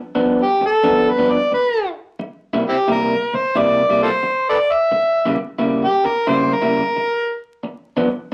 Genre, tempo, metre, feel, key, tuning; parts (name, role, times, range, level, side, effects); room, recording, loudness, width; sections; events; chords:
blues; 88 BPM; 4/4; swing 65% on 8ths; A4 = 440 Hz
electric guitar through a small old amp; riff; 0.1-8.3 s; G2 to E4; -22 LUFS; equal
overdriven harmonica; melody; 0.4-7.4 s; C4 to E5; -18 LUFS; equal
moderate club reverb, RT60 0.6 s; vinyl crackle; -18 LUFS; mono
0.0-8.3 A section
harmonica solo 0.0-8.3
0.0 G7; 2.0 C7; 4.7 C#dim7; 7.4 G7